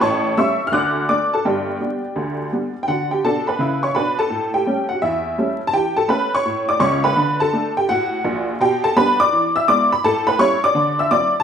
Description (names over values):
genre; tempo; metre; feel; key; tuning
jazz, stride piano; 168 BPM; 4/4; swing 66% on 8ths; D major; A4 = 440 Hz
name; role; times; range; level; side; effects
honky-tonk upright piano; solo; 0.0-11.4 s; G1 to F#6; -16 LUFS; equal; none
room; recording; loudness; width
wet large studio reverb, RT60 1.2 s; band playing live in one room, vinyl crackle; -16 LUFS; side -8 dB against mid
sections
0.0-2.9 A section; 2.9-11.4 B section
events
none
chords
0.0 A7; 0.7 D; 1.4 G; 2.9 D; 4.3 A7; 5.7 A7/E; 7.2 D; 8.6 G/B; 9.3 E7; 10.0 A7; 10.7 D9